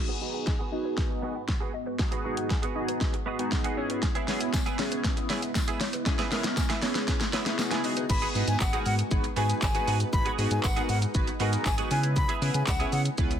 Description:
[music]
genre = dance-pop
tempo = 118 BPM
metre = 4/4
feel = straight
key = G# minor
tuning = A4 = 442 Hz
[part]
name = chorused polysynth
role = accompaniment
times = 0.0-13.3 s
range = B3 to C#5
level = -32 LUFS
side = equal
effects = phaser, sidechain pumping, low-pass filter
[part]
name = shimmering ambient pad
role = sustained chords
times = 0.9-13.4 s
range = G#2 to B4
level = -37 LUFS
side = right 1 dB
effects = chorus, built-in reverb, sidechain pumping, low-pass filter
[part]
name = mallet-like synth pluck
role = arpeggios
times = 0.0-8.0 s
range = C#4 to G#5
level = -40 LUFS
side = left 4 dB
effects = chorus, sidechain pumping, low-pass filter, ping-pong delay
[part]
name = twelve-string electric guitar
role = riff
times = 0.1-13.3 s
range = B3 to G#4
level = -35 LUFS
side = right 7 dB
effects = ensemble chorus, low-pass filter
[part]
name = pop drum kit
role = drums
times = 0.5-13.4 s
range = crash cymbal, handclaps, hi-hat, kick drum, shaker, snare drum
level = -28 LUFS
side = equal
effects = soft clipping on snare
[part]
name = tambourine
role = percussion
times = 4.5-12.8 s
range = none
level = -43 LUFS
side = left 5 dB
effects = none
[part]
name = breathy bright concert flute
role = melody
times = 8.1-13.0 s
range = F#5 to B5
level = -32 LUFS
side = left 1 dB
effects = ping-pong delay
[part]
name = round analog bass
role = bass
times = 8.1-13.4 s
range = G#1 to C#3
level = -28 LUFS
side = equal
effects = sidechain pumping
[sound]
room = light reverb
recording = dense, heavily limited modern master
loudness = -25 LUFS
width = side -9 dB against mid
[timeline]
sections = 0.0-8.1 A section; 8.1-13.4 B section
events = build-up 0.0-8.1; drum fill 0.0-8.1; filter sweep 0.0-8.1; drop 8.1-13.4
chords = 0.0 G#m7; 3.8 C#m7; 7.8 G#m7; 11.9 C#m7

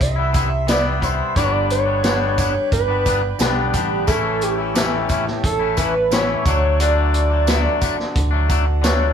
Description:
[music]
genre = psychedelic rock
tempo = 88 BPM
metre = 4/4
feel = straight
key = A mixolydian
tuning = A4 = 440 Hz
[part]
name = pulse-width lead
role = melody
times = 0.0-9.1 s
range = G4 to E5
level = -22 LUFS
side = right 2 dB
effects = chorus
[part]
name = hand-pumped harmonium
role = sustained chords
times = 0.0-9.1 s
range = D4 to C6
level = -31 LUFS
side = right 7 dB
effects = none
[part]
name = twangy electric guitar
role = riff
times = 0.0-9.1 s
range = G2 to E4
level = -22 LUFS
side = left 7 dB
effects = none
[part]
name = picked electric bass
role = bass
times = 0.0-9.1 s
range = G1 to D2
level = -21 LUFS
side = right 1 dB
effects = none
[part]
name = vintage drum kit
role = drums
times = 0.0-9.0 s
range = hi-hat, kick drum, snare drum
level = -22 LUFS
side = equal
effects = none
[part]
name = tambourine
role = percussion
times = 0.3-9.0 s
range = none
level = -33 LUFS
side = right 8 dB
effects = none
[sound]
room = wet studio reverb, RT60 0.5 s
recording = band playing live in one room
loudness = -16 LUFS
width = side -8 dB against mid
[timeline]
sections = 0.0-9.1 A section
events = none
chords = 0.0 Cmaj7; 1.4 G; 4.1 A; 6.5 D

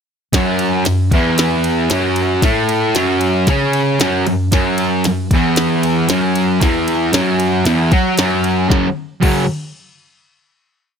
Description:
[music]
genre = garage rock duo or trio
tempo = 115 BPM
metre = 4/4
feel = straight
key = F# minor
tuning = A4 = 440 Hz
[part]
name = fuzz guitar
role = riff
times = 0.3-9.4 s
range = E2 to F#4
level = -14 LUFS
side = equal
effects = distortion
[part]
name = minimal click drum kit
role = drums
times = 0.3-9.3 s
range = crash cymbal, kick drum, ride cymbal, snare drum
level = -18 LUFS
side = equal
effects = none
[sound]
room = light reverb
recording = none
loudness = -13 LUFS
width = side -7 dB against mid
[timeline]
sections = 0.3-8.7 riff; 8.7-10.8 final chord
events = none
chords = 0.3 F#m; 8.7 F#5

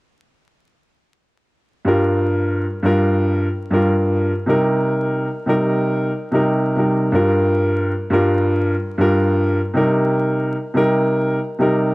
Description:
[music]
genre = hip hop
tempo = 91 BPM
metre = 4/4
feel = swing 62% on 16ths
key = unclear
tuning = A4 = 440 Hz
[part]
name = warm grand piano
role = accompaniment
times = 1.8-11.9 s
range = G2 to Bb4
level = -16 LUFS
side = equal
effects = cassette tape
[sound]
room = moderate plate reverb, RT60 3.0 s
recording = worn, warbling old tape, cassette tape, vinyl crackle, warbly pitch drift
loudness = -16 LUFS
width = side -21 dB against mid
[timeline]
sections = 1.9-7.1 A section; 7.1-11.9 B section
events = none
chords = 1.9 Gm7; 4.5 Cm7; 7.1 Gm7; 9.8 Cm7

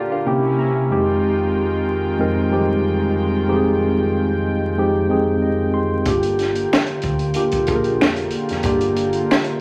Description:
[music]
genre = R&B, neo-soul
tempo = 93 BPM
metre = 4/4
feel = swing 54% on 16ths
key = F dorian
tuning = A4 = 440 Hz
[part]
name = mellow tine electric piano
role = accompaniment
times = 0.0-9.6 s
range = F2 to C6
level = -20 LUFS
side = equal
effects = none
[part]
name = warm analog pad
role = sustained chords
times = 0.0-9.6 s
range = C3 to G5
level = -29 LUFS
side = equal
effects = chorus
[part]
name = deep dub fingered electric bass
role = bass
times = 6.1-9.2 s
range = F1 to D2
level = -30 LUFS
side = equal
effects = none
[part]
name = compact cocktail drum kit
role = drums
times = 6.1-9.6 s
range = finger snaps, hi-hat, kick drum, snare drum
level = -23 LUFS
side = equal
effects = none
[sound]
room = moderate large studio reverb, RT60 1.1 s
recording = vinyl crackle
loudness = -19 LUFS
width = mono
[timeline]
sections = 0.0-9.6 A section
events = tine electric piano fill 0.0-0.9, 5.1-6.1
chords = 0.3 C7b9; 0.9 Fm9; 6.1 Gm7

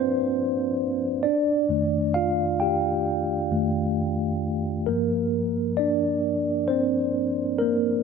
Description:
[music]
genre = R&B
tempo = 66 BPM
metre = 4/4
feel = swing 54% on 16ths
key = G minor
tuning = A4 = 441 Hz
[part]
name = mellow tine electric piano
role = solo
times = 0.0-8.0 s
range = F2 to G5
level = -22 LUFS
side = equal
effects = medium stereo tremolo
[sound]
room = moderate lush hall reverb, RT60 2.7 s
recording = none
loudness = -22 LUFS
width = side -5 dB against mid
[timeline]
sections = 0.0-8.0 A section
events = tine electric piano solo 0.0-8.0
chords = 0.0 Gm7; 1.2 F13; 4.9 Gm7

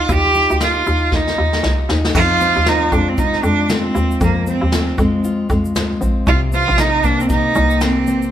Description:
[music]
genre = acoustic pop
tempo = 117 BPM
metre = 4/4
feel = swing 60% on 16ths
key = unclear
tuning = A4 = 440 Hz
[part]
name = rich cello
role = melody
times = 0.0-8.3 s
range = Bb3 to G4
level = -17 LUFS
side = right 3 dB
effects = none
[part]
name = fingerpicked steel-string acoustic guitar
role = accompaniment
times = 0.0-8.3 s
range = F2 to G4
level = -20 LUFS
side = left 3 dB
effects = none
[part]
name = hollow knocking FM bass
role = bass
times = 0.0-8.3 s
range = Bb1 to F2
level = -20 LUFS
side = equal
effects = none
[part]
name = vintage brush drum kit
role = drums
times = 0.1-8.3 s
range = crash cymbal, kick drum, shaker, snare drum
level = -21 LUFS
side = equal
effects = none
[sound]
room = moderate stone room reverb, RT60 1.3 s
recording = band playing live in one room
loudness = -13 LUFS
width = side -11 dB against mid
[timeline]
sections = 0.0-2.2 A section; 2.2-8.3 B section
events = drum fill 1.1-2.2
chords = 0.0 Ebadd9; 2.2 Fm7; 6.3 Cm7

